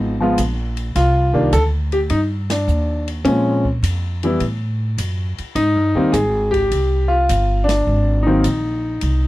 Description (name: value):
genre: jazz piano trio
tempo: 104 BPM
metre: 4/4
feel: swing 69% on 8ths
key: unclear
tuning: A4 = 440 Hz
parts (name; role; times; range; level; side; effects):
- warm grand piano; melody; 0.0-9.3 s; Eb3 to A4; -18 LUFS; left 1 dB; none
- upright bass; bass; 0.0-9.3 s; G1 to Bb2; -19 LUFS; equal; none
- open jazz drum kit; drums; 0.4-9.2 s; hi-hat, kick drum, ride cymbal, snare drum; -30 LUFS; left 1 dB; none
room: little or no reverb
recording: dry, close 1970s-style studio recording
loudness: -16 LUFS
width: side -17 dB against mid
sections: 0.0-9.3 A section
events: band accent 2.4, 7.6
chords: 0.0 C#7 (rootless); 1.0 Cmadd9; 3.3 Bbm7; 4.4 F#m; 5.6 Abmaj7; 7.9 Abadd9